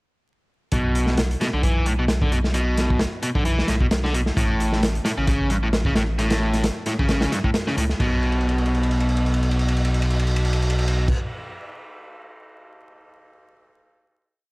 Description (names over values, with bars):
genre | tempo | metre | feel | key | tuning
breakbeat, breaks | 132 BPM | 4/4 | swing 56% on 16ths | unclear | A4 = 440 Hz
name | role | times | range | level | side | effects
biting overdriven guitar | riff | 0.7-11.1 s | G2 to E3 | -23 LUFS | equal | tube saturation, low-pass filter, analog delay
saturated sub bass | bass | 0.7-11.1 s | A1 to C#2 | -23 LUFS | equal | tube saturation
crunchy breakbeat drum kit | drums | 0.7-11.2 s | crash cymbal, hi-hat, kick drum, ride cymbal, snare drum | -24 LUFS | equal | none
room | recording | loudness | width
studio ambience | dry, gritty hardware recording, transformer saturation, vinyl crackle | -19 LUFS | side -25 dB against mid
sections
0.7-8.0 groove; 8.0-11.6 final note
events
drum fill 8.2-11.1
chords
0.7 N.C.; 4.4 A; 8.0 N.C.